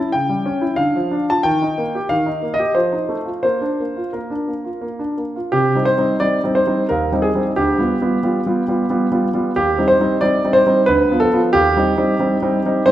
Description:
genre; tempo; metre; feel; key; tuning
classical-period piano sonatina; 90 BPM; 3/4; rubato; Bb major, C minor from 5.5 s; A4 = 442 Hz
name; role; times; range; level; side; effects
warm concert grand piano; solo; 0.0-12.9 s; D2 to A5; -15 LUFS; equal; none
room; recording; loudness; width
wet recital hall reverb, RT60 1.6 s; none; -15 LUFS; side -13 dB against mid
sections
0.0-5.5 A section; 5.5-12.9 B section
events
none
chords
0.0 A7/C# (rootless); 0.8 Dm; 1.5 Eb; 2.8 F7; 3.5 Bb; 5.5 Cm; 6.9 Cm/Eb; 7.6 G7/D; 9.6 Cm/Eb; 10.9 Bdim/D; 11.5 Cm/Eb

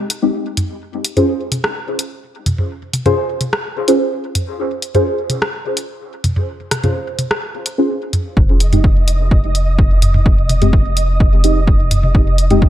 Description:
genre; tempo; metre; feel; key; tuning
dub techno; 127 BPM; 4/4; straight; F minor; A4 = 440 Hz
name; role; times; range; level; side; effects
punchy analog drum machine; drums; 0.1-12.6 s; hi-hat, rim click; -20 LUFS; left 1 dB; none
deep mellow chord stab; stabs; 0.2-12.6 s; Ab3 to C5; -18 LUFS; equal; chorus, phaser, sidechain pumping, dub echo
electronic toms; percussion; 0.6-12.6 s; none; -18 LUFS; equal; sidechain pumping on toms
soft dub sub bass; bass; 8.4-12.7 s; F1; -15 LUFS; equal; sidechain pumping
electronic kick drum; drums; 8.4-12.7 s; none; -13 LUFS; equal; none
flickering grainy texture; texture; 8.7-12.7 s; Eb5; -24 LUFS; right 4 dB; built-in reverb, sidechain pumping
room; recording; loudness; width
light reverb; dark, warm production; -14 LUFS; side -13 dB against mid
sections
0.0-8.4 A section; 8.4-12.7 B section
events
none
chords
0.0 Abmaj7; 0.8 Dbmaj7; 8.4 Fm9

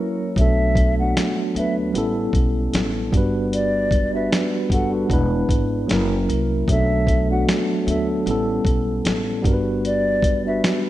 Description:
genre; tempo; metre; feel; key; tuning
lo-fi hip hop; 76 BPM; 4/4; swing 55% on 16ths; B minor; A4 = 440 Hz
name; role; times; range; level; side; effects
mellow tine electric piano; accompaniment; 0.0-10.9 s; F#3 to B4; -21 LUFS; right 1 dB; medium stereo tremolo, cassette tape
mellow hollow jazz flute; melody; 0.4-10.6 s; D5 to F#5; -24 LUFS; left 1 dB; none
upright bass; bass; 0.4-10.6 s; E1 to D2; -24 LUFS; equal; none
dusty soul sampler-style drum kit; drums; 0.4-10.8 s; finger snaps, hi-hat, kick drum, snare drum; -21 LUFS; equal; none
room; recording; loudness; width
light reverb, studio ambience; rough home demo mix; -18 LUFS; side -14 dB against mid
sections
0.0-10.9 A section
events
break 0.0-0.4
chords
0.4 Bm7; 1.9 A9; 3.1 Gmaj7; 5.1 E7; 5.9 F#7; 6.7 Bm7; 8.3 A9; 9.4 Gmaj7

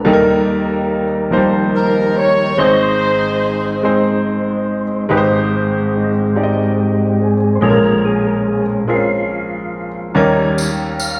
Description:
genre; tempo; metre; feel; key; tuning
slow gospel; 48 BPM (dotted quarters); 6/8; straight; Ab major; A4 = 440 Hz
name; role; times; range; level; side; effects
warm horn section; melody; 0.0-4.3 s; Eb4 to Db5; -19 LUFS; equal; none
clear concert grand piano; accompaniment; 0.0-11.2 s; Ab1 to Eb5; -18 LUFS; equal; none
percussive tonewheel organ; sustained chords; 0.0-11.2 s; Ab2 to F5; -20 LUFS; equal; fast rotary speaker, overdrive, chorus vibrato
tambourine; percussion; 10.6-11.2 s; none; -27 LUFS; equal; none
room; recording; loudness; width
wet recital hall reverb, RT60 1.4 s; recorded in a church or concert hall; -15 LUFS; mono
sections
0.0-5.1 A section; 5.1-11.2 B section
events
tonewheel organ solo 5.1-11.2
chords
0.1 Eb; 2.6 Ab; 5.1 Abmaj7; 7.6 Bbm7; 10.1 Eb7

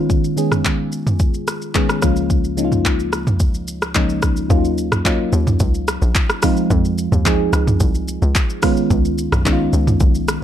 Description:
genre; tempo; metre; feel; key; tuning
amapiano; 109 BPM; 4/4; straight; Eb minor; A4 = 438 Hz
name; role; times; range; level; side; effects
mellow FM electric piano; accompaniment; 0.0-10.4 s; Db2 to Ab4; -19 LUFS; equal; chorus, phaser
deep house drum kit; drums; 0.1-10.4 s; handclaps, hi-hat, kick drum, rim click, shaker, toms; -18 LUFS; equal; none
tight log drum bass; bass; 4.5-10.4 s; Bb1 to F2; -19 LUFS; equal; none
room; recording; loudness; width
little or no reverb; dark, warm production; -15 LUFS; side -10 dB against mid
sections
0.0-4.5 A section; 4.5-10.4 B section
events
drop 4.5-10.4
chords
0.0 Db9; 2.0 Bbm7/Db; 4.5 Ebm9; 6.4 Fm7; 8.6 Db9

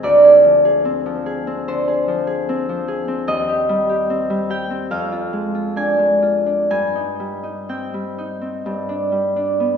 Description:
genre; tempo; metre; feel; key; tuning
classical, solo harp piece; 61-75 BPM; 4/4; rubato; C minor; A4 = 440 Hz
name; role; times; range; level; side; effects
Celtic harp; solo; 0.0-9.8 s; D2 to Ab5; -16 LUFS; right 1 dB; none
room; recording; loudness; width
wet recital hall reverb, RT60 1.4 s; recorded in a church or concert hall; -16 LUFS; side -7 dB against mid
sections
0.0-9.8 A section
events
none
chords
0.0 Dm7b5; 3.3 Cm/Eb; 4.9 Ddim/F; 6.7 Cm/G; 8.7 G

